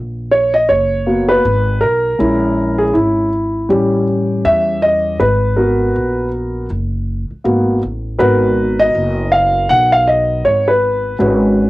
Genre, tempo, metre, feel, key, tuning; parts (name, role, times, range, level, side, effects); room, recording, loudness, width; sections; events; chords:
hip hop, jazz-hop; 80 BPM; 4/4; swing 60% on 16ths; A4 = 439 Hz
upright bass; bass; 0.0-11.7 s; F#1 to E2; -19 LUFS; equal
dark concert grand piano; accompaniment; 0.3-11.7 s; G3 to F#5; -13 LUFS; equal; cassette tape
light reverb; home recording on cassette; -12 LUFS; side -18 dB against mid
0.0-11.2 A section
grand piano solo 0.0-11.2
0.0 G#m9; 2.2 A#m7b5; 3.7 A7; 5.2 G#m9; 11.2 G#m7